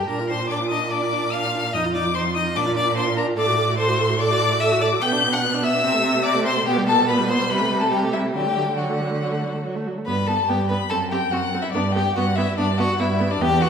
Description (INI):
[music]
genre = quick classical-period movement for string quartet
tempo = 145 BPM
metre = 4/4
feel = straight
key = G major from 3.4 s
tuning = A4 = 440 Hz
[part]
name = rich violin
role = melody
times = 0.0-13.7 s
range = D5 to G6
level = -23 LUFS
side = left 6 dB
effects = none
[part]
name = rich violin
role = second line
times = 0.0-13.7 s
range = D4 to G5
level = -26 LUFS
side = left 1 dB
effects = none
[part]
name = warm viola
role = accompaniment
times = 0.0-13.7 s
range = F#3 to A4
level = -26 LUFS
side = right 3 dB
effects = none
[part]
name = warm cello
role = bass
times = 0.0-13.7 s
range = E2 to D3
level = -24 LUFS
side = right 3 dB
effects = none
[sound]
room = wet recital hall reverb, RT60 1.5 s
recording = recorded in a church or concert hall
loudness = -19 LUFS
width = side -7 dB against mid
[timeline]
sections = 0.0-10.1 A section; 10.1-13.7 B section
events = none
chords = 0.1 Bb; 1.7 Cmadd11/F; 2.6 Bb; 3.4 D7/A; 5.0 Em9/B; 5.8 Am/C; 6.7 G/B; 7.5 Am7/C; 8.3 D; 10.1 G; 10.9 F#dim; 11.7 G